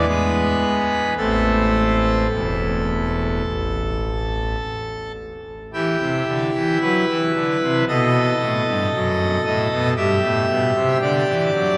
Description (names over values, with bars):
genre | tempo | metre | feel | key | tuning
classical, chorale-style piece for pipe organ | 52-58 BPM | 4/4 | rubato | A minor, E minor from 5.7 s | A4 = 439 Hz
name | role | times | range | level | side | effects
pipe organ, full organ | solo | 0.0-11.8 s | E1 to E5 | -20 LUFS | equal | none
room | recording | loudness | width
wet cathedral reverb, RT60 6.6 s | none | -20 LUFS | mono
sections
0.0-5.7 A section; 5.7-11.8 B section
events
none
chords
0.0 E (rootless); 1.2 Am; 5.7 Em; 7.9 B7; 10.0 Em/G